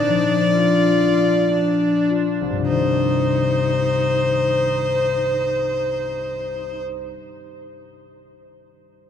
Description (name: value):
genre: celtic folk, Celtic slow air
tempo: 50-70 BPM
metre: 3/4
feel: rubato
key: C minor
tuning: A4 = 438 Hz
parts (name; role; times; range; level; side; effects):
- bright fiddle; melody; 0.0-6.8 s; C5 to D5; -21 LUFS; left 1 dB; none
- clear viola; second line; 0.0-6.8 s; D4 to F4; -26 LUFS; right 3 dB; none
- concert harp; accompaniment; 0.0-7.6 s; C2 to D5; -21 LUFS; left 4 dB; none
room: wet cathedral reverb, RT60 6.2 s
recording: dark, warm production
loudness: -17 LUFS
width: side -8 dB against mid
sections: 0.0-2.7 A section; 2.7-6.1 B section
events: slowing down 0.0-2.7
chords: 0.0 Bb; 2.7 Cmadd9